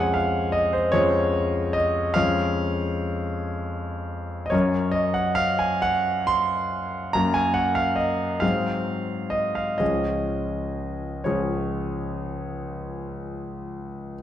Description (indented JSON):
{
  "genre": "classical, romantic nocturne for solo piano",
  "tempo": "41-52 BPM (dotted quarters)",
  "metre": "12/8",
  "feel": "rubato",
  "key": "Db major",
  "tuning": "A4 = 437 Hz",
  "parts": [
    { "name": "clear concert grand piano", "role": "solo", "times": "0.0-14.2 s", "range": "Db2 to C6", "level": "-22 LUFS", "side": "equal", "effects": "none" }
  ],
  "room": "moderate recital hall reverb, RT60 1.4 s",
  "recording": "none",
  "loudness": "-22 LUFS",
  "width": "side -11 dB against mid",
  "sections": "0.0-14.2 A section",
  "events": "none",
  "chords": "0.0 Db/F; 4.5 Gb; 7.1 Gbmaj13; 8.4 Ab7; 9.8 Db"
}